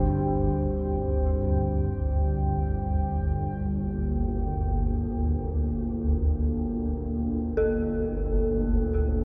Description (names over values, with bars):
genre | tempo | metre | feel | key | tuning
dark ambient drone | free time | none | none | G minor | A4 = 440 Hz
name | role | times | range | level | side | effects
dark analog pad | sustained chords | 0.0-9.2 s | G3 to G5 | -33 LUFS | equal | chorus
dark detuned synth bell | arpeggios | 0.0-9.2 s | D4 to A4 | -34 LUFS | equal | chorus, tape echo
swarming drone | drone | 0.0-9.2 s | G1 to D2 | -29 LUFS | equal | built-in reverb
room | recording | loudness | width
wet cathedral reverb, RT60 7.1 s | worn, warbling old tape, cassette tape, warbly pitch drift | -27 LUFS | mono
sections
0.0-3.7 A section; 3.7-9.2 B section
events
none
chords
0.0 G5; 3.7 Gmadd9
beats
free time